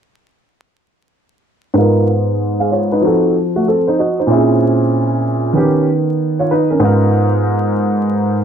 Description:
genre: hip hop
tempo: 95 BPM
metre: 4/4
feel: swing 63% on 16ths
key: G# dorian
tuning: A4 = 440 Hz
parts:
  - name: dark baby grand piano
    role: accompaniment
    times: 1.7-8.4 s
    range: G#2 to E#5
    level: -12 LUFS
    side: right 1 dB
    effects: low-pass filter
room: moderate small room ambience, RT60 0.5 s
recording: dark, warm production, vinyl crackle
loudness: -12 LUFS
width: side -8 dB against mid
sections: 1.8-8.4 A section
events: filter sweep on grand piano 1.8-8.4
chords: 1.8 G#m69; 3.0 F7b9; 4.3 A#m7b5; 5.6 D#7b13; 6.8 G#m69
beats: | 1.76 2.40 3.03 3.66 | 4.29 4.92 5.55 6.19 | 6.82 7.45 8.08

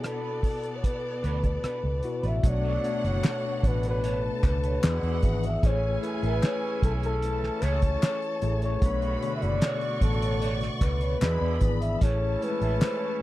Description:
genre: lush 1970s-style soul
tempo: 75 BPM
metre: 4/4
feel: straight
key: B dorian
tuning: A4 = 440 Hz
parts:
  - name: breathy flugelhorn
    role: melody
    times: 0.0-13.2 s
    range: A4 to E5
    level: -31 LUFS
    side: left 2 dB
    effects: none
  - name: warm studio string section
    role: second line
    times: 0.0-13.2 s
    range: A3 to C#6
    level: -38 LUFS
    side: equal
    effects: none
  - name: tine electric piano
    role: accompaniment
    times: 0.0-13.2 s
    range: B2 to E5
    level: -33 LUFS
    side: left 3 dB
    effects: medium stereo tremolo, tube saturation
  - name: electric guitar at the edge of break-up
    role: riff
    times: 0.0-13.2 s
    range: D4 to E5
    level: -38 LUFS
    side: right 5 dB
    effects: wah
  - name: cloth-damped thuddy drum kit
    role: drums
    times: 0.0-13.0 s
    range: hi-hat, kick drum, rim click, snare drum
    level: -24 LUFS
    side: equal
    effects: none
  - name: vintage muted fingered electric bass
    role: bass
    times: 1.2-12.8 s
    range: F#1 to E2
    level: -28 LUFS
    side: equal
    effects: none
  - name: tonewheel organ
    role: sustained chords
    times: 2.4-13.2 s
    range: E3 to G#4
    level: -40 LUFS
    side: equal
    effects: overdrive, fast rotary speaker
  - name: clear horn section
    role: stabs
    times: 2.4-13.2 s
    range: A2 to F#4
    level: -40 LUFS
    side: right 12 dB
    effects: none
  - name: group handclap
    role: percussion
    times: 3.2-13.0 s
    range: none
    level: -40 LUFS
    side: left 5 dB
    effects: none
room: little or no reverb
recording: dry, close 1970s-style studio recording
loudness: -24 LUFS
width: side -16 dB against mid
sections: 0.0-2.4 A section; 2.4-13.2 B section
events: none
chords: 0.0 D6/B; 2.4 Bm9; 4.8 E7; 5.6 Amaj7; 8.8 Bm9; 11.2 E7; 12.0 Amaj7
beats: 0.03 0.83 1.63 | 2.43 3.23 4.03 4.83 | 5.63 6.43 7.22 8.02 | 8.82 9.62 10.42 11.22 | 12.02 12.82

